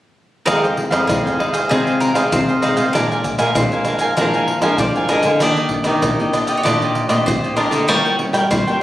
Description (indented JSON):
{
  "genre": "samba and choro",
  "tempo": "97 BPM",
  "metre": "4/4",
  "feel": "straight",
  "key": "F minor",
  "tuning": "A4 = 438 Hz",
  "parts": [
    { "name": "bowl-back mandolin", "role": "second line", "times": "0.5-8.8 s", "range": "Ab4 to Eb5", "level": "-24 LUFS", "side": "left 1 dB", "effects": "none" },
    { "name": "cavaquinho", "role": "accompaniment", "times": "0.5-8.8 s", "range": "D4 to Ab5", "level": "-19 LUFS", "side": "right 2 dB", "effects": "none" },
    { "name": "nylon-string guitar", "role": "accompaniment", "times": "0.5-8.8 s", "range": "F2 to G4", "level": "-24 LUFS", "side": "left 2 dB", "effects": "none" },
    { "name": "nylon-string guitar", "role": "bass", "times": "0.5-8.8 s", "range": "F2 to G3", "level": "-20 LUFS", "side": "equal", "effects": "none" },
    { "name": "maracas, surdo, pandeiro and tamborim", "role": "percussion", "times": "0.5-8.8 s", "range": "none", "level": "-22 LUFS", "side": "equal", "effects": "none" }
  ],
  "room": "moderate large studio reverb, RT60 0.8 s",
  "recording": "recorded on a phone in the room, studio reverb, compression",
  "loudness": "-14 LUFS",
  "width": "side -14 dB against mid",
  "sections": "0.5-8.8 A section",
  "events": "none",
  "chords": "0.5 Fm7; 2.9 Bb7; 5.4 Ebmaj7; 7.9 Gm7b5",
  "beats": "| 0.47 1.08 1.70 2.32 | 2.94 3.56 4.18 4.80 | 5.41 6.03 6.65 7.27 | 7.89 8.51"
}